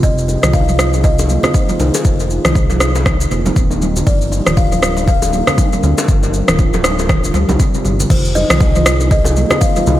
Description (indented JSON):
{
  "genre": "afro house",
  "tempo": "119 BPM",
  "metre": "4/4",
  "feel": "swing 58% on 16ths",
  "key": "F dorian",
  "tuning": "A4 = 436 Hz",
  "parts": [
    { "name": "buzzing kalimba", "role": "melody", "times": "0.0-10.0 s", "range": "C5 to F5", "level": "-22 LUFS", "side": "left 2 dB", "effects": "tape echo" },
    { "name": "dark analog pad", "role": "sustained chords", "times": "0.0-10.0 s", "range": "G3 to Bb4", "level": "-25 LUFS", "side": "equal", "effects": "chorus, sidechain pumping" },
    { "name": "handpan", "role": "arpeggios", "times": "0.0-9.9 s", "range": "C3 to Eb4", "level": "-22 LUFS", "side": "right 1 dB", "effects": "sidechain pumping, tape echo" },
    { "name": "round analog bass", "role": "bass", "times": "0.0-10.0 s", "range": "D1 to D2", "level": "-17 LUFS", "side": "equal", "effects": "tube saturation, sidechain pumping" },
    { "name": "afro-pop drum kit", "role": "drums", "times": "0.0-10.0 s", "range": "crash cymbal, rim click, shaker, toms", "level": "-18 LUFS", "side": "equal", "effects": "overdrive, dub echo" },
    { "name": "electronic kick drum", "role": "drums", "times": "0.0-9.7 s", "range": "none", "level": "-14 LUFS", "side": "equal", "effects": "overdrive" },
    { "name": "bongos", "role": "percussion", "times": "0.3-10.0 s", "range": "none", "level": "-25 LUFS", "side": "left 2 dB", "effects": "dub echo" },
    { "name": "congas", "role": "percussion", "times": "0.7-10.0 s", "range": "none", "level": "-23 LUFS", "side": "right 2 dB", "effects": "dub echo" },
    { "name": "felt-muted upright piano", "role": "stabs", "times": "8.4-10.0 s", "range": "F4 to Eb5", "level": "-24 LUFS", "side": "left 3 dB", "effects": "none" }
  ],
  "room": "light reverb, small room reverb",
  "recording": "echo-heavy mix",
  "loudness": "-11 LUFS",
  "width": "side -13 dB against mid",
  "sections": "0.0-8.1 A section; 8.1-10.0 B section",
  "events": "drop 8.1-10.0",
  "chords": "0.0 Fm7; 4.1 Gm7; 8.1 Fm7"
}